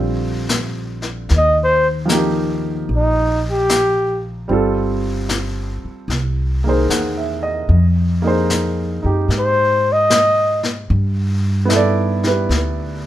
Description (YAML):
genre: jazz ballad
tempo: 75 BPM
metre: 4/4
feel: swing 68% on 8ths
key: unclear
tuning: A4 = 440 Hz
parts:
  - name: warm upright piano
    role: accompaniment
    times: 0.0-13.1 s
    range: D3 to F#5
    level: -20 LUFS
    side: right 2 dB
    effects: none
  - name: upright bass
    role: bass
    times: 0.0-13.1 s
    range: G1 to Ab2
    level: -19 LUFS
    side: equal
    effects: none
  - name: jazz brush drum kit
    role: drums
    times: 0.5-13.1 s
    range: brushed snare drum, hi-hat, snare drum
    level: -24 LUFS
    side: left 3 dB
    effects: none
  - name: mellow flugelhorn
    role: melody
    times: 1.4-4.2, 9.4-10.7 s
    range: Eb4 to Eb5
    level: -14 LUFS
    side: equal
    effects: none
room: moderate studio reverb, RT60 0.7 s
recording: minimal, uncompressed stereo recording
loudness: -15 LUFS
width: side -13 dB against mid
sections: 0.0-13.1 A section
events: flugelhorn solo 0.0-13.1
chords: 0.0 Bb; 1.3 Ebadd9; 4.5 G9sus4; 6.1 C7alt; 7.7 Fm9; 10.9 Gadd9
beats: 0.50 | 1.30 2.10 2.89 3.69 | 4.49 5.29 6.09 6.90 | 7.70 8.50 9.30 10.10 | 10.90 11.70 12.50